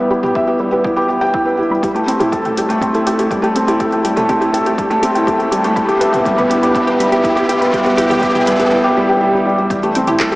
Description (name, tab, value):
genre	piano and strings electronica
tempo	122 BPM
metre	4/4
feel	straight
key	unclear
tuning	A4 = 441 Hz
part	wide unison pluck	arpeggios	0.0-10.4 s	G4 to E6	-20 LUFS	equal	vintage 12-bit sampler grit, sidechain pumping, tape echo
part	felt-muted upright piano	riff	0.0-10.4 s	G3 to G5	-13 LUFS	equal	wide subtle chorus, tape echo
part	deep house drum kit	drums	0.2-10.4 s	handclaps, hi-hat, toms	-27 LUFS	equal	overdrive
part	electronic kick drum	drums	0.4-10.3 s	none	-26 LUFS	equal	overdrive
part	riser	sound effects	3.9-8.7 s	none	-25 LUFS	equal	none
part	round analog bass	bass	9.7-10.4 s	A1	-32 LUFS	equal	sidechain pumping
room	wet cathedral reverb, RT60 5.0 s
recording	dreamy mix soaked in reverb, small speaker sound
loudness	-12 LUFS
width	side -20 dB against mid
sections	0.0-9.7 A section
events	build-up 0.0-9.7; filter sweep on synth arpeggio sound 0.0-9.7; riser 3.9-8.7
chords	0.0 Em; 1.8 Am7; 5.8 Em; 9.7 Am7